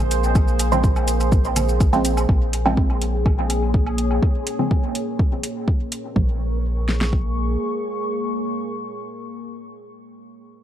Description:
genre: dub techno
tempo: 124 BPM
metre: 4/4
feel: straight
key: Bb minor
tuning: A4 = 440 Hz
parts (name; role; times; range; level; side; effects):
- deep dark ambient pad; sustained chords; 0.0-10.0 s; Bb3 to Db6; -26 LUFS; right 1 dB; chorus, built-in reverb, sidechain pumping
- soft dub sub bass; bass; 0.0-7.6 s; Bb1; -22 LUFS; equal; tube saturation, sidechain pumping
- congas and woodblock; percussion; 0.0-4.2 s; none; -32 LUFS; right 1 dB; overdrive, sidechain pumping on perc, dub echo
- electronic hi-hat and shaker; drums; 0.1-6.0 s; none; -28 LUFS; equal; none
- deep house drum kit; drums; 0.4-7.2 s; kick drum, snare drum; -19 LUFS; equal; none
- filtered dub chord stab; stabs; 0.7-10.0 s; Db3 to C4; -24 LUFS; right 2 dB; phaser, sidechain pumping, dub echo
- bubbling stepped-filter texture; texture; 2.3-6.2 s; Ab4; -32 LUFS; left 5 dB; chorus, built-in reverb, sidechain pumping
room: digital ambience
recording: dark, warm production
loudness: -18 LUFS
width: side -11 dB against mid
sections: 0.0-2.3 A section; 2.3-6.2 B section; 6.2-10.0 C section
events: filter sweep on ambient pad 2.3-6.2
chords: 0.0 Bbm7

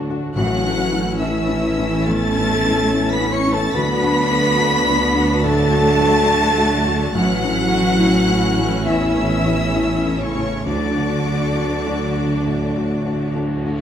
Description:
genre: cinematic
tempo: 70 BPM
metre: 4/4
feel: uneven beats, rubato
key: A major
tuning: A4 = 437 Hz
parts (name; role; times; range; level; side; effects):
- felt-muted upright piano; accompaniment; 0.0-13.8 s; A1 to F#4; -24 LUFS; left 3 dB; none
- rich symphonic viola section; accompaniment; 0.0-13.8 s; C#4 to F#4; -26 LUFS; right 1 dB; none
- mellow French horn section; sustained chords; 0.0-13.6 s; E3 to D4; -27 LUFS; left 4 dB; none
- rich studio double bass section; bass; 0.0-13.8 s; A1 to D2; -24 LUFS; right 3 dB; none
- warm symphonic violin section; melody; 0.4-13.3 s; C#6 to C#7; -26 LUFS; left 2 dB; none
- bright small flute group; second line; 0.4-13.3 s; C#5 to C#6; -25 LUFS; left 1 dB; none
- dark clarinet; second line; 0.4-13.3 s; C#4 to C#5; -25 LUFS; equal; none
- rich symphonic violin section; second line; 0.4-13.3 s; C#5 to C#6; -28 LUFS; equal; none
- rich symphonic cello section; bass; 0.4-13.3 s; C#3 to C#4; -23 LUFS; right 2 dB; none
- timpani; percussion; 0.4-1.6 s; A2; -28 LUFS; left 1 dB; none
room: wet recital hall reverb, RT60 1.6 s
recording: none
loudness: -16 LUFS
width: side -9 dB against mid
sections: 0.0-13.8 A section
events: none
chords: 0.4 A; 3.7 D; 7.1 A; 10.7 D

